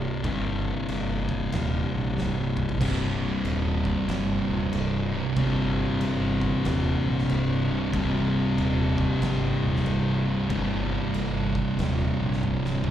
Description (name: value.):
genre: stoner and doom metal.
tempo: 94 BPM.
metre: 4/4.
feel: swing 63% on 8ths.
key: unclear.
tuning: A4 = 440 Hz.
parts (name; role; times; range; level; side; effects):
percussive tonewheel organ; sustained chords; 0.0-12.9 s; C3 to D4; -40 LUFS; right 4 dB; none.
thick fuzz guitar; riff; 0.0-12.9 s; C2 to C3; -26 LUFS; left 4 dB; distortion.
fuzz fingered electric bass; bass; 0.0-12.9 s; C1 to Bb1; -30 LUFS; right 1 dB; overdrive.
oversized low-tuned drum kit; drums; 0.2-12.9 s; crash cymbal, kick drum, snare drum, toms; -34 LUFS; right 1 dB; none.
fuzz guitar; riff; 2.8-12.9 s; C2 to C3; -29 LUFS; right 10 dB; distortion.
room: light reverb.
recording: live gig heard through the venue's PA, club reverb.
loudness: -23 LUFS.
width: side -11 dB against mid.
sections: 0.0-12.9 A section.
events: drum fill 2.2-2.8, 12.4-12.9.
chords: 0.0 Cm.